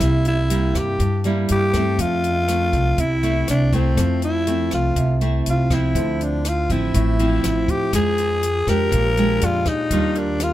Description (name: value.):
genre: bossa nova.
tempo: 121 BPM.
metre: 4/4.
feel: straight.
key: F major, D minor from 6.0 s.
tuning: A4 = 439 Hz.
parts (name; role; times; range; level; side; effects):
growling alto saxophone; melody; 0.0-10.5 s; C4 to Bb4; -22 LUFS; equal; none.
nylon-string guitar; accompaniment; 0.0-10.5 s; G2 to G4; -23 LUFS; right 1 dB; none.
warm baby grand piano; accompaniment; 0.0-2.2, 6.0-10.5 s; A4 to E5; -37 LUFS; left 1 dB; none.
upright bass; bass; 0.0-10.5 s; A1 to G2; -21 LUFS; equal; none.
compact cocktail drum kit; drums; 0.0-10.5 s; hi-hat, kick drum, rim click; -26 LUFS; equal; none.
room: little or no reverb.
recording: close, detailed microphones.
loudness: -17 LUFS.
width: side -14 dB against mid.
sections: 0.0-6.0 A section; 6.0-10.5 B section.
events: none.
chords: 0.0 C7; 2.0 Fmaj7; 6.0 Dm9; 7.9 Fm9; 8.9 Bb6; 9.9 Ebmaj9.